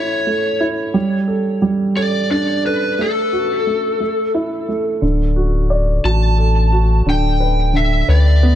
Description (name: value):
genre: pop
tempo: 59 BPM (dotted quarters)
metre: 6/8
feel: straight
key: unclear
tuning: A4 = 440 Hz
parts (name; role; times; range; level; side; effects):
- lead guitar through a small cranked amp; melody; 0.0-8.6 s; A4 to A5; -20 LUFS; left 2 dB; overdrive, analog delay
- warm baby grand piano; accompaniment; 0.0-8.6 s; D3 to D5; -19 LUFS; right 2 dB; none
- warm sub bass; bass; 5.0-8.6 s; D1 to D2; -14 LUFS; left 1 dB; none
room: light reverb, small room ambience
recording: echo-heavy mix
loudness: -14 LUFS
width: side -11 dB against mid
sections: 0.0-8.6 A section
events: none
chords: 0.0 A; 1.0 Gsus2; 3.0 F#m/A; 4.0 A5; 5.0 D; 7.1 G/D